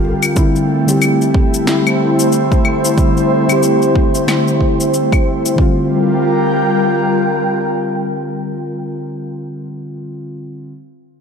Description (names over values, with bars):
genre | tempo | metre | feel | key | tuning
organic downtempo | 92 BPM | 4/4 | swing 59% on 16ths | G dorian | A4 = 440 Hz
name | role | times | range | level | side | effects
muted felt-like synth keys | accompaniment | 0.0-10.7 s | D3 to G4 | -17 LUFS | left 1 dB | chorus, sidechain pumping, low-pass filter, ping-pong delay
airy breathy pad | sustained chords | 0.0-9.0 s | G3 to G5 | -16 LUFS | equal | chorus, sidechain pumping
electronic claves, shaker and snare drum | drums | 0.2-5.6 s | none | -20 LUFS | left 3 dB | overdrive, small room ambience
electronic kick drum | drums | 0.4-5.7 s | none | -15 LUFS | right 1 dB | overdrive, small room ambience
room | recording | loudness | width
moderate echo chamber reverb, RT60 2.0 s, digital ambience | none | -12 LUFS | side -6 dB against mid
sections
0.0-5.6 A section; 5.6-8.2 B section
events
none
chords
0.4 Am7; 5.6 Gm7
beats
| 0.36 1.01 1.67 2.32 | 2.97 3.62 4.28 4.93 | 5.58 6.23 6.88 7.54